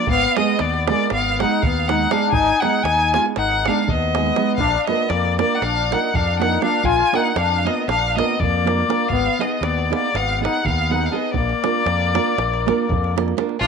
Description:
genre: balkan folk, Balkan wedding band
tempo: 239 BPM (eighths)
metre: 9/8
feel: straight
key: Bb phrygian dominant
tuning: A4 = 443 Hz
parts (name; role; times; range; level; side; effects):
- bright violin; melody; 0.0-13.7 s; F4 to Ab5; -21 LUFS; left 1 dB; none
- accordion; second line; 0.0-13.7 s; Bb3 to F4; -23 LUFS; left 11 dB; light tremolo tuning
- nylon-string guitar; accompaniment; 0.0-13.6 s; Ab3 to Cb5; -23 LUFS; right 13 dB; none
- modern bright fingered electric bass; bass; 0.1-13.7 s; Ab1 to F2; -24 LUFS; left 1 dB; tube saturation
- davul; percussion; 0.1-13.6 s; none; -26 LUFS; right 5 dB; none
room: moderate spring reverb, RT60 1.6 s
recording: 1960s-style stereo with parts hard left and right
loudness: -17 LUFS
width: side -6 dB against mid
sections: 0.0-13.6 A section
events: none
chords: 0.1 Abm; 4.6 Bb; 9.1 Abm; 11.4 Bb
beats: | 0.09 0.34 0.59 0.84 1.09 1.34 1.59 1.84 2.09 | 2.34 2.59 2.84 3.09 3.34 3.59 3.84 4.09 4.34 | 4.59 4.84 5.09 5.34 5.59 5.84 6.09 6.34 6.59 | 6.84 7.09 7.35 7.60 7.85 8.10 8.35 8.60 8.85 | 9.10 9.35 9.60 9.86 10.11 10.36 10.61 10.86 11.11 | 11.36 11.61 11.86 12.11 12.36 12.62 12.87 13.12 13.37 | 13.62

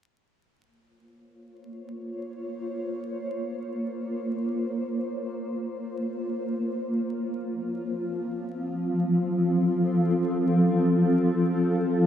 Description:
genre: ambient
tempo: free time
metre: none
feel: none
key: Bb harmonic minor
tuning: A4 = 440 Hz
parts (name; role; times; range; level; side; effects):
- granular cloud pad; sustained chords; 1.7-12.1 s; F3 to Db5; -25 LUFS; equal; built-in reverb
room: wet spring reverb, RT60 1.8 s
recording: vinyl crackle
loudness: -25 LUFS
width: side -10 dB against mid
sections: 0.5-12.1 A section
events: fade-in on ambient pad 0.5-12.1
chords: 0.5 Bbmadd9; 7.0 F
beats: free time

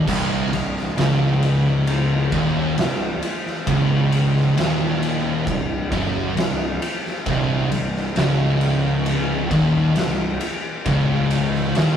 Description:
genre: stoner and doom metal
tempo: 67 BPM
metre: 4/4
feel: straight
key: unclear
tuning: A4 = 440 Hz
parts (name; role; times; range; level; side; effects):
- thick fuzz guitar; riff; 0.0-12.0 s; C2 to F#2; -22 LUFS; left 3 dB; distortion
- thick fuzz guitar; riff; 0.0-12.0 s; C2 to F#2; -23 LUFS; right 5 dB; distortion
- fuzz picked electric bass; bass; 0.0-12.0 s; C1 to F#1; -29 LUFS; equal; overdrive
- distorted electric guitar; riff; 0.1-12.0 s; C2 to F#2; -27 LUFS; left 1 dB; overdrive
- oversized low-tuned drum kit; drums; 0.1-12.0 s; crash cymbal, kick drum, ride cymbal, snare drum; -24 LUFS; equal; none
room: light reverb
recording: rough rehearsal-room recording, tube saturation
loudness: -18 LUFS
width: side -8 dB against mid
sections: 0.1-12.0 A section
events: none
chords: 0.1 Cm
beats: | 0.08 0.98 1.88 2.77 | 3.67 4.57 5.47 6.37 | 7.26 8.16 9.06 9.96 | 10.86 11.76

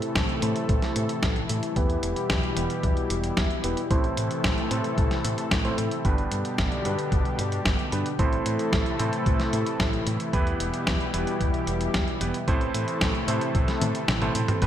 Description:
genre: italo disco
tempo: 112 BPM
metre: 4/4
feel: straight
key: A minor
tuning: A4 = 441 Hz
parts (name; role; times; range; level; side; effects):
- warm analog pad; sustained chords; 0.0-14.7 s; B2 to A4; -29 LUFS; left 2 dB; chorus
- bright electric grand piano; stabs; 0.0-14.7 s; G2 to C5; -31 LUFS; right 3 dB; low-pass filter, digital delay
- dusty soul sampler-style drum kit; drums; 0.0-14.7 s; hi-hat, snare drum, toms; -29 LUFS; equal; gated reverb
- fingered electric bass with an envelope filter; bass; 0.2-14.7 s; E1 to A2; -31 LUFS; equal; tube saturation
- electronic kick drum; drums; 0.2-14.7 s; none; -26 LUFS; equal; none
room: moderate lush hall reverb, RT60 1.9 s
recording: bright 1980s-style digital production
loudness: -23 LUFS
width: side -10 dB against mid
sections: 0.0-14.7 A section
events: filter sweep on electric grand piano 0.0-14.7; drum fill 13.8-14.6; kick drops out 14.1-14.6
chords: 0.0 Am; 1.8 Em; 3.9 Am; 6.0 G; 8.2 Am; 10.3 Em; 12.5 Am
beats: 0.15 0.69 1.23 | 1.76 2.30 2.83 3.37 | 3.90 4.44 4.98 5.51 | 6.05 6.58 7.12 7.66 | 8.19 8.73 9.26 9.80 | 10.33 10.87 11.40 11.94 | 12.48 13.01 13.55 14.08 | 14.62

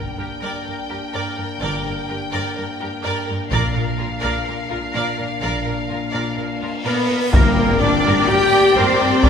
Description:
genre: cinematic, epic orchestral film score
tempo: 126 BPM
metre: 4/4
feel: straight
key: G minor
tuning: A4 = 439 Hz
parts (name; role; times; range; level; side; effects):
- warm symphonic violin section; melody; 0.0-9.3 s; F5 to G5; -29 LUFS; left 3 dB; none
- rich symphonic violin section; second line; 0.0-9.3 s; F4 to G5; -27 LUFS; left 1 dB; none
- clear symphonic viola section; accompaniment; 0.0-9.3 s; G4 to D5; -26 LUFS; right 1 dB; none
- mellow French horn section; sustained chords; 0.0-9.3 s; Bb3 to G4; -24 LUFS; left 4 dB; none
- clear symphonic cello section; bass; 0.0-9.3 s; G2 to G4; -25 LUFS; right 2 dB; none
- rich symphonic double bass section; bass; 1.6-9.3 s; G1 to G2; -26 LUFS; right 2 dB; none
- taiko ensemble; drums; 3.5-4.5, 7.3-9.3 s; none; -21 LUFS; left 1 dB; none
- cymbal swell and impact; sound effects; 6.6-9.2 s; none; -31 LUFS; equal; none
- mellow hollow baroque flute; second line; 6.9-9.3 s; Bb4 to G5; -30 LUFS; equal; none
- mellow trumpet; stabs; 6.9-9.3 s; Bb4 to G5; -23 LUFS; equal; none
- rich symphonic string section; sustained chords; 7.3-9.3 s; Bb3 to D5; -28 LUFS; left 1 dB; none
- tam-tam; percussion; 7.3-9.2 s; none; -26 LUFS; left 1 dB; none
- timpani; percussion; 7.3-8.0 s; G2; -26 LUFS; left 1 dB; none
room: wet concert hall reverb, RT60 2.3 s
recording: recorded in a church or concert hall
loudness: -17 LUFS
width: side -7 dB against mid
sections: 0.0-7.3 A section; 7.3-9.3 B section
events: cymbal swell 6.6-7.3; band accent 7.3-7.8; impact 7.3-9.2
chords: 0.0 Gm; 3.5 Bb; 7.3 Gm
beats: 0.19 0.66 1.14 | 1.62 2.09 2.57 3.04 | 3.52 4.00 4.47 4.95 | 5.43 5.90 6.38 6.86 | 7.33 7.81 8.28 8.76 | 9.24

